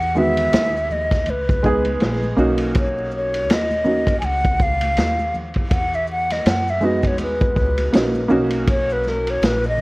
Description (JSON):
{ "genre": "hip hop, jazz-hop", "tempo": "81 BPM", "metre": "4/4", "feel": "swing 58% on 16ths", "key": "E lydian", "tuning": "A4 = 440 Hz", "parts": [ { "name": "breathy mellow silver concert flute", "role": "melody", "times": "0.0-9.8 s", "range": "A#4 to G#5", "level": "-22 LUFS", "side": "equal", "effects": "none" }, { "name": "upright bass", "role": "bass", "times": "0.0-9.8 s", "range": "A#1 to F#2", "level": "-26 LUFS", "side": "equal", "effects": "none" }, { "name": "maracas and congas", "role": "percussion", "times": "0.0-9.8 s", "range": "none", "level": "-34 LUFS", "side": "left 1 dB", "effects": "none" }, { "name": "warm upright piano", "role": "accompaniment", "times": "0.1-9.5 s", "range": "D#3 to G#4", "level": "-21 LUFS", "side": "right 1 dB", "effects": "none" }, { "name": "vintage drum kit", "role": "drums", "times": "0.4-9.6 s", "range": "hi-hat, kick drum, ride cymbal, snare drum", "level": "-21 LUFS", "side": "equal", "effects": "vintage 12-bit sampler grit" } ], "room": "light reverb, small room ambience", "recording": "worn, warbling old tape, cassette tape, vinyl crackle, warbly pitch drift", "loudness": "-17 LUFS", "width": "side -22 dB against mid", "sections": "0.0-9.8 A section", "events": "none", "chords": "0.0 Emaj9; 2.4 Bmaj9; 5.7 Emaj9; 8.3 Bmaj9", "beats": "0.53 1.27 2.01 | 2.75 3.49 4.23 4.97 | 5.71 6.46 7.20 7.94 | 8.68 9.42" }